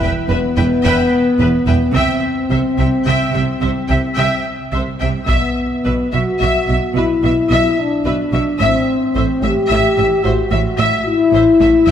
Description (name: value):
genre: cinematic, epic orchestral film score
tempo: 73 BPM (dotted quarters)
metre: 12/8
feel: straight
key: unclear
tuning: A4 = 440 Hz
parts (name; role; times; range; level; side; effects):
- rich symphonic violin section; melody; 0.0-11.9 s; B4 to G5; -28 LUFS; left 5 dB; none
- clear symphonic violin section; second line; 0.0-11.9 s; B4 to E5; -24 LUFS; equal; none
- clear symphonic viola section; accompaniment; 0.0-11.9 s; B4 to E5; -23 LUFS; right 1 dB; none
- mellow French horn section; sustained chords; 0.0-11.9 s; B3 to G4; -16 LUFS; left 2 dB; none
- rich studio cello section; bass; 0.0-11.9 s; E2 to C3; -21 LUFS; right 3 dB; none
- rich symphonic double bass section; bass; 0.0-11.9 s; E1 to C2; -21 LUFS; right 2 dB; none
- taiko ensemble; drums; 5.3-6.4, 11.9 s; none; -22 LUFS; equal; none
room: wet concert hall reverb, RT60 2.2 s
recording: none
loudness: -13 LUFS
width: side -9 dB against mid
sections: 0.0-11.9 A section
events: none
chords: 0.0 Em; 1.9 C; 5.3 Bsus4; 8.6 Am